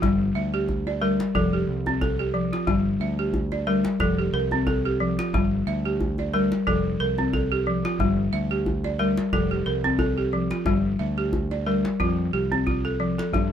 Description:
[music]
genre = west african traditional, West African string and xylophone music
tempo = 90 BPM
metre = 4/4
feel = swing 55% on 16ths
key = F major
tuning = A4 = 439 Hz
[part]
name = balafon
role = arpeggios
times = 0.0-13.5 s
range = F3 to E5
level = -23 LUFS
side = left 1 dB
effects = none
[part]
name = overdriven fingered electric bass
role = bass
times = 0.0-13.5 s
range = F1 to G2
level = -28 LUFS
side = right 1 dB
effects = none
[part]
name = djembe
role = percussion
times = 0.0-13.5 s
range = none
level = -29 LUFS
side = equal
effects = none
[sound]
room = little or no reverb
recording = minimal, uncompressed stereo recording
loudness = -22 LUFS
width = side -9 dB against mid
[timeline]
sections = 0.0-12.0 A section; 12.0-13.5 B section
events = none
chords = 0.0 Gm; 1.3 F; 2.7 Gm; 4.0 F; 5.3 Gm; 6.7 F; 8.0 Gm; 9.3 F; 10.7 Gm; 12.0 F

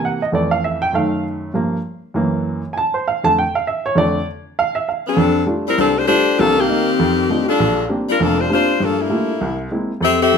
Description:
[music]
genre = jazz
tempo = 198 BPM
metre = 4/4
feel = swing 62% on 8ths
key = F major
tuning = A4 = 436 Hz
[part]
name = warm baby grand piano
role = accompaniment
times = 0.0-10.4 s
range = F1 to A5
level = -18 LUFS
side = right 2 dB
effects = none
[part]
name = clear saxophone section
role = melody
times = 5.1-10.4 s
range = Eb3 to E5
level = -15 LUFS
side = left 3 dB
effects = none
[sound]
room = moderate large studio reverb, RT60 0.8 s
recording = none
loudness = -15 LUFS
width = side -6 dB against mid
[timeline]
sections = 0.0-5.2 A section; 5.2-10.4 B section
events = grand piano solo 0.0-5.2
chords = 0.3 Fmaj7; 0.9 Gbm6; 1.5 Gm7; 2.1 Gb7; 2.7 F6; 5.2 F69; 6.4 Cm7; 7.0 F13; 7.6 Bb69; 8.8 Gm9; 9.4 Caug7

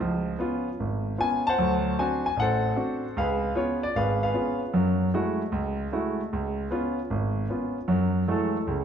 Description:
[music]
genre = solo jazz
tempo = 152 BPM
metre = 4/4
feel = swing 66% on 8ths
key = F# harmonic minor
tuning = A4 = 440 Hz
[part]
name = warm concert grand piano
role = solo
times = 0.0-8.8 s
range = G#1 to A5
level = -24 LUFS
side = equal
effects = none
[sound]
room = wet recital hall reverb, RT60 1.7 s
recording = recorded in a church or concert hall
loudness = -24 LUFS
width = side -8 dB against mid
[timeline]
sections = 0.0-7.9 A section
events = none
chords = 0.0 C#7; 1.6 D7; 3.2 C#7; 4.7 F#m9; 6.3 C#7; 7.9 F#m9

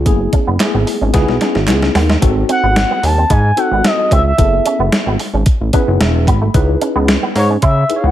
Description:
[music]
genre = early-eighties boogie funk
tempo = 111 BPM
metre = 4/4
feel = straight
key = C# minor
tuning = A4 = 440 Hz
[part]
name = chorused synth bass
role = bass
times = 0.0-8.1 s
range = E1 to C#3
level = -14 LUFS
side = equal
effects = none
[part]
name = tine electric piano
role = accompaniment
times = 0.1-8.1 s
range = A3 to B5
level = -19 LUFS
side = left 2 dB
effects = overdrive, fast stereo tremolo
[part]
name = crisp 8-bit digital drum machine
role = drums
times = 0.1-8.0 s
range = hi-hat, kick drum, snare drum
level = -15 LUFS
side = equal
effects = overdrive, gated reverb
[part]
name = electric guitar with an envelope filter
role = riff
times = 0.2-8.1 s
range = G#3 to E4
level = -22 LUFS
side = right 4 dB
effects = ensemble chorus
[part]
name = group handclap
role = percussion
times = 0.6-1.8 s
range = none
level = -25 LUFS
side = right 3 dB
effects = none
[part]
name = expressive synth lead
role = melody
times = 2.5-8.1 s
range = C#5 to A5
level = -16 LUFS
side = equal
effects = chorus, slapback echo
[sound]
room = little or no reverb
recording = none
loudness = -11 LUFS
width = side -12 dB against mid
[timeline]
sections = 0.0-2.2 A section; 2.2-8.1 B section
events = drum fill 1.1-2.2; tine electric piano fill 5.7-6.5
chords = 0.1 F#m11; 1.1 C#m9; 2.2 G#7b9; 4.4 F#m11; 6.5 C#m9

